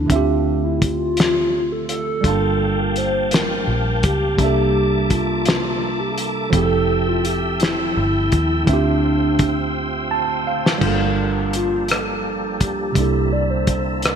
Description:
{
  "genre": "slow six-eight R&B",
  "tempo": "56 BPM (dotted quarters)",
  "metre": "6/8",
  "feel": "straight",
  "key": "unclear",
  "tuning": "A4 = 440 Hz",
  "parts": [
    { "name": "hollow clarinet-like synth lead", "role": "melody", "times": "0.0-13.8 s", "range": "D4 to D5", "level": "-22 LUFS", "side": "left 2 dB", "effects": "chorus, digital delay" },
    { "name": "tine electric piano", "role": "accompaniment", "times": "0.0-14.2 s", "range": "C3 to A5", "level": "-22 LUFS", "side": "right 6 dB", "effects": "wide subtle chorus" },
    { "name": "vintage muted fingered electric bass", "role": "bass", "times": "0.0-14.2 s", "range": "F1 to Eb2", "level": "-24 LUFS", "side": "left 1 dB", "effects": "none" },
    { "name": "cloth-damped thuddy drum kit", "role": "drums", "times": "0.1-14.2 s", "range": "crash cymbal, hi-hat, kick drum, rim click, snare drum", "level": "-21 LUFS", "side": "left 1 dB", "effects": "gated reverb" },
    { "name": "tonewheel organ", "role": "sustained chords", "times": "2.2-14.2 s", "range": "D3 to E6", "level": "-26 LUFS", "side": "equal", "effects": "chorus vibrato, stopped rotary speaker" }
  ],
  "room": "moderate lush hall reverb, RT60 3.3 s",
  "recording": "bright 1980s-style digital production",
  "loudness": "-17 LUFS",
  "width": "side -7 dB against mid",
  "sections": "0.0-10.8 A section; 10.8-14.2 B section",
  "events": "drum fill 9.7-10.8; tine electric piano fill 9.7-10.8; soft synth lead solo 10.8-14.2",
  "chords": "0.1 Dm11; 2.2 Gm9; 4.4 C13; 6.5 Fmaj9; 8.7 Dm11; 10.8 Gm9; 13.0 C13",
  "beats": "| 0.10 1.17 | 2.24 3.31 | 4.38 5.46 | 6.53 7.60 | 8.67 9.74 | 10.81 11.88 | 12.96 14.03"
}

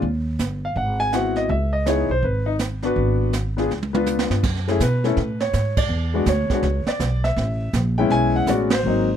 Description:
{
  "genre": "jazz piano trio",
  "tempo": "163 BPM",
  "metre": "4/4",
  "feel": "swing 64% on 8ths",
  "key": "C# minor, F# minor from 4.4 s",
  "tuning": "A4 = 440 Hz",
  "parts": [
    { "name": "warm concert grand piano", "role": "melody", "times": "0.0-9.2 s", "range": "F#3 to G#5", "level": "-22 LUFS", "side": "left 2 dB", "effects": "none" },
    { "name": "upright bass", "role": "bass", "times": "0.0-9.2 s", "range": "G1 to B2", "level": "-22 LUFS", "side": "right 1 dB", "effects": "none" },
    { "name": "jazz brush drum kit", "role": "drums", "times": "0.0-9.2 s", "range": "brushed snare drum, crash cymbal, hi-hat, kick drum, ride cymbal, snare drum, toms", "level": "-26 LUFS", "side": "right 3 dB", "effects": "none" }
  ],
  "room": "light reverb",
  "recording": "minimal, uncompressed stereo recording",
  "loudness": "-19 LUFS",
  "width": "side -9 dB against mid",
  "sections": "0.0-4.4 A section; 4.4-9.2 B section",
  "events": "drum fill 3.7-4.4; band accent 5.7, 8.7",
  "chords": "0.0 D#; 0.8 G#7alt; 1.5 C#m9; 3.0 G#m7b5; 3.7 C#7b9; 4.4 F#madd9; 5.9 E7(no3); 7.4 Amaj9",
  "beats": "| 0.02 0.39 0.76 1.13 | 1.49 1.86 2.23 2.60 | 2.96 3.33 3.70 4.07 | 4.43 4.80 5.17 5.54 | 5.90 6.27 6.64 7.01 | 7.38 7.74 8.11 8.48 | 8.85"
}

